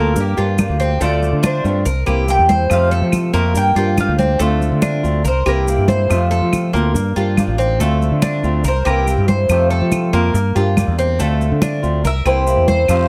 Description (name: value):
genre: latin, Cuban son and guajira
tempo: 142 BPM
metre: 4/4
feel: straight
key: F major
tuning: A4 = 440 Hz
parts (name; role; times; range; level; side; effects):
- Cuban tres; melody; 0.0-5.9, 8.7-9.3, 12.1-12.7 s; G4 to G5; -22 LUFS; equal; none
- fingerpicked swing-style acoustic guitar; accompaniment; 0.0-13.1 s; C3 to G4; -25 LUFS; equal; none
- Cuban tres; arpeggios; 0.0-13.1 s; A3 to C5; -22 LUFS; equal; none
- mellow fretless electric bass; bass; 0.0-13.1 s; A1 to F3; -19 LUFS; equal; none
- congas; percussion; 0.2-13.1 s; none; -24 LUFS; equal; none
- maracas; percussion; 0.2-13.1 s; none; -37 LUFS; equal; none
- claves; percussion; 0.6-13.1 s; none; -31 LUFS; equal; none
- guiro; percussion; 12.9-13.1 s; none; -43 LUFS; equal; none
room: light reverb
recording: close, detailed microphones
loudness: -16 LUFS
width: mono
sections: 0.0-13.1 A section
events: Cuban tres solo 0.0-13.1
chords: 0.2 Gm7; 1.0 Dm7; 1.9 C7; 2.7 F; 3.6 Gm7; 4.4 Dm7; 5.3 C7; 6.1 F; 6.9 Gm7; 7.8 Dm7; 8.6 C7; 9.5 F; 10.3 Gm7; 11.2 Dm7; 12.0 C7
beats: 0.16 0.58 | 1.01 1.43 1.86 2.28 | 2.70 3.13 3.55 3.98 | 4.40 4.83 5.25 5.68 | 6.10 6.53 6.95 7.37 | 7.80 8.22 8.65 9.07 | 9.49 9.92 10.34 10.77 | 11.19 11.62 12.04 12.46 | 12.89